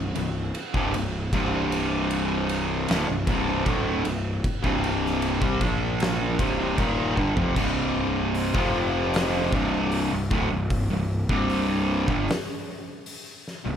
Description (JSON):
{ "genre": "stoner and doom metal", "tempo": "77 BPM", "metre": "4/4", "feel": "straight", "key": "C dorian", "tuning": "A4 = 440 Hz", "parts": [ { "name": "fuzz guitar", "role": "riff", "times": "0.0-13.8 s", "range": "C2 to Bb3", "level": "-24 LUFS", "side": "equal", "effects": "distortion" }, { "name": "fuzz picked electric bass", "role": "bass", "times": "0.0-13.8 s", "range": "C1 to C2", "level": "-29 LUFS", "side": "equal", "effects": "overdrive" }, { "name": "oversized low-tuned drum kit", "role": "drums", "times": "0.2-13.6 s", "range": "crash cymbal, hi-hat, kick drum, ride cymbal, snare drum, toms", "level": "-29 LUFS", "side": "equal", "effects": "none" } ], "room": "light reverb", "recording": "none", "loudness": "-22 LUFS", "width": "side -8 dB against mid", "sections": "0.0-7.6 A section; 7.6-13.8 B section", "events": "drum fill 7.2-7.6", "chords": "0.0 C5; 5.6 Bb5; 6.4 Cm; 7.6 C5; 8.6 F5; 9.5 C5" }